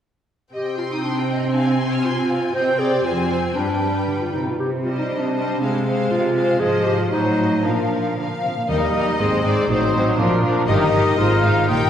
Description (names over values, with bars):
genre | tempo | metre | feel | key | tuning
quick classical-period movement for symphony orchestra | 118 BPM | 2/4 | rubato | C minor, Eb major from 6.6 s | A4 = 439 Hz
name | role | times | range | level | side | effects
rich studio violin section | melody | 0.5-11.9 s | C5 to Ab5 | -27 LUFS | left 3 dB | none
mellow clarinet | second line | 0.5-11.9 s | C4 to C5 | -23 LUFS | equal | none
rich studio violin section | second line | 0.5-11.9 s | Eb4 to F6 | -27 LUFS | left 2 dB | none
bright studio viola section | accompaniment | 0.5-11.9 s | Eb3 to Eb4 | -25 LUFS | equal | none
rich studio cello section | bass | 0.5-11.8 s | F2 to Eb3 | -24 LUFS | right 1 dB | none
mellow cor anglais | second line | 8.7-11.9 s | Bb4 to C5 | -28 LUFS | right 1 dB | none
mellow hollow concert flute | second line | 8.7-11.9 s | D6 to F6 | -26 LUFS | equal | none
mellow French horn section | sustained chords | 8.7-11.9 s | F3 to F4 | -25 LUFS | left 2 dB | none
dark studio double bass section | bass | 8.7-11.9 s | G1 to Eb2 | -24 LUFS | right 1 dB | none
timpani | percussion | 8.7-9.2 s | Eb3 | -32 LUFS | right 1 dB | none
room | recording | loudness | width
wet concert hall reverb, RT60 1.8 s | heard from further back in the room | -17 LUFS | side -9 dB against mid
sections
0.5-8.7 A section; 8.7-11.9 B section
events
none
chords
0.5 Cm; 3.0 Fm; 3.6 G; 4.6 Cm; 5.6 Fm/C; 6.6 Fm7/Ab; 7.1 Adim7; 7.6 Bb; 8.7 Eb; 9.2 Ab; 9.7 Adim7; 10.2 Bb; 10.7 Eb/G; 11.2 Fm7/Ab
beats
| 0.53 1.04 | 1.54 2.04 | 2.54 3.04 | 3.55 4.07 | 4.60 5.10 | 5.61 6.11 | 6.61 7.12 | 7.64 8.16 | 8.69 9.20 | 9.69 10.18 | 10.67 11.18 | 11.69